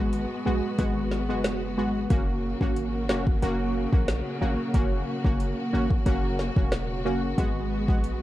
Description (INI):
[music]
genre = dancehall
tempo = 91 BPM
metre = 4/4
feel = straight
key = unclear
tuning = A4 = 440 Hz
[part]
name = synth brass stab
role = accompaniment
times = 0.0-8.2 s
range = G#3 to F#4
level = -28 LUFS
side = equal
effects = chorus, sidechain pumping
[part]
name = clear studio string section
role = sustained chords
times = 0.0-8.2 s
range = C#3 to F#4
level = -33 LUFS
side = equal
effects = sidechain pumping
[part]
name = hard-hitting 808-style bass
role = bass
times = 0.0-8.2 s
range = E1 to A#1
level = -30 LUFS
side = equal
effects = none
[part]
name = downlifter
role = sound effects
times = 0.0-2.1 s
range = none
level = -51 LUFS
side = right 4 dB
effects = none
[part]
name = afro-pop drum kit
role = drums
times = 0.1-8.2 s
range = hi-hat, kick drum, rim click, snare drum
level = -26 LUFS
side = equal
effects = overdrive
[sound]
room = light reverb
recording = dark, warm production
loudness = -24 LUFS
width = side -14 dB against mid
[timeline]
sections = 0.0-8.2 A section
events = none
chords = 0.0 G#m7; 2.1 F#; 7.4 G#m7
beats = 0.13 0.79 1.45 | 2.10 2.76 3.42 4.08 | 4.74 5.40 6.06 6.72 | 7.38 8.04